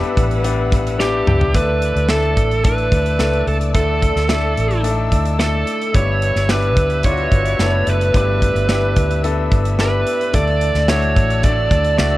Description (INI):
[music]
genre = piano-driven pop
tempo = 109 BPM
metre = 4/4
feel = straight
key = D major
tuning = A4 = 440 Hz
[part]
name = clear concert grand piano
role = accompaniment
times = 0.0-12.2 s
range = G2 to A4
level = -22 LUFS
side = left 4 dB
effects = none
[part]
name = warm studio string section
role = sustained chords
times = 0.0-12.2 s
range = D4 to E6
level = -29 LUFS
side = equal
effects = none
[part]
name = modern studio drum kit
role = drums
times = 0.0-12.1 s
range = hi-hat, kick drum, snare drum, toms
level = -19 LUFS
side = equal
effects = none
[part]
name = vintage muted fingered electric bass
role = bass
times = 0.2-12.2 s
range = F#1 to D2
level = -19 LUFS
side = equal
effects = none
[part]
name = biting lead guitar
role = melody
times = 1.0-12.2 s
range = G4 to D5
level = -20 LUFS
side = right 2 dB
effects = overdrive
[sound]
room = studio reverb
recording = worn, warbling old tape, cassette tape, warbly pitch drift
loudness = -14 LUFS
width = side -16 dB against mid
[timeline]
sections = 0.0-1.5 A section; 1.5-12.2 B section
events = drum fill 1.0-1.5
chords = 0.0 G6; 1.5 Dsus2; 5.9 G6; 10.3 Dsus2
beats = 0.45 0.99 | 1.54 2.10 2.65 3.19 | 3.75 4.29 4.84 5.39 | 5.95 6.49 7.04 7.59 | 8.14 8.69 9.24 9.79 | 10.34 10.89 11.44 11.99